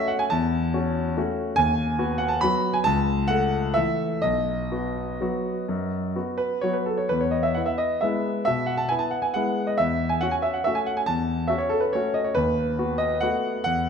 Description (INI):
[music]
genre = classical, piano waltz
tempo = 121-150 BPM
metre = 3/4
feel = rubato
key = unclear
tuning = A4 = 440 Hz
[part]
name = clear concert grand piano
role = solo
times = 0.0-13.9 s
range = B1 to B5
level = -22 LUFS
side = equal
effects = none
[sound]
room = moderate recital hall reverb, RT60 1.7 s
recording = dark, warm production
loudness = -22 LUFS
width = side -6 dB against mid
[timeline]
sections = 0.0-13.9 A section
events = none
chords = 0.0 F#m7/E; 1.6 B/D#; 2.9 A/C#; 4.2 B; 7.1 E; 12.4 B7/D#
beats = | 0.31 0.74 1.16 | 1.57 1.99 2.42 | 2.86 3.30 3.76 | 4.23 4.71 5.20 | 5.68 6.15 6.63 | 7.11 7.57 8.03 | 8.46 8.90 9.36 | 9.79 10.22 10.66 | 11.08 11.49 11.94 | 12.37 12.78 13.22 | 13.66